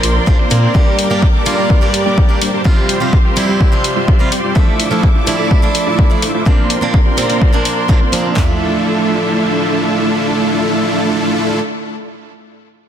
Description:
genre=EDM, festival progressive house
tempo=126 BPM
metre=4/4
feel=straight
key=D minor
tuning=A4 = 438 Hz
part: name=picked plugged-in swing-style acoustic guitar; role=accompaniment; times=0.0-11.6 s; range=G2 to E5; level=-19 LUFS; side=right 2 dB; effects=sidechain pumping, ping-pong delay
part: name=clear symphonic string section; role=sustained chords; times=0.0-11.6 s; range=D3 to D6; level=-21 LUFS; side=equal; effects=sidechain pumping
part: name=wide detuned saw bass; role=bass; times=0.0-0.7 s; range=Bb1 to Bb2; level=-14 LUFS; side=equal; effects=chorus, sidechain pumping
part: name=electronic hi-hat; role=drums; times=0.0-8.2 s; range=none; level=-19 LUFS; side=left 3 dB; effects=small room ambience
part: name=big-room dance drum kit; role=drums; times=0.3-8.5 s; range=handclaps, kick drum, toms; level=-12 LUFS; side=equal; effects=small room ambience
part: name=dense compressed supersaw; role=riff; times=0.4-11.6 s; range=G3 to E5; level=-17 LUFS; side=equal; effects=sidechain pumping, low-pass filter, ping-pong delay
room=light reverb, digital ambience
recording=dense, heavily limited modern master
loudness=-11 LUFS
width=side -9 dB against mid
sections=0.0-8.4 A section; 8.4-12.2 B section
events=filter sweep on supersaw synth 0.0-8.4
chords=0.0 Bbadd9; 0.7 Gm; 2.7 Csus4; 4.6 Dmadd9; 6.5 Bbadd9; 8.4 Dmadd9

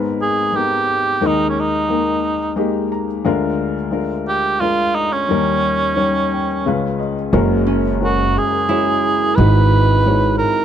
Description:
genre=acoustic folk-pop ballad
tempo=88 BPM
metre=3/4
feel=straight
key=unclear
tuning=A4 = 438 Hz
part: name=felt-muted upright piano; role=accompaniment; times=0.0-10.6 s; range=F#1 to A#5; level=-19 LUFS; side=left 3 dB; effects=none
part: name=warm cor anglais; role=melody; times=0.2-10.6 s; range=C#4 to B4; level=-18 LUFS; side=right 3 dB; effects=none
part: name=upright bass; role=bass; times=7.3-10.4 s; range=F#1 to G#1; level=-16 LUFS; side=right 1 dB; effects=none
part: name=concert harp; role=arpeggios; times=7.7-10.6 s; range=C#4 to E4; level=-22 LUFS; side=right 6 dB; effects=none
room=light reverb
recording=none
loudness=-15 LUFS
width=side -9 dB against mid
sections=0.0-7.3 A section; 7.3-10.6 B section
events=none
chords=0.0 G#madd9; 1.2 D#sus4; 3.3 A#7/D; 5.3 D#7; 6.7 C#7; 7.3 F#add9; 9.4 G#m7

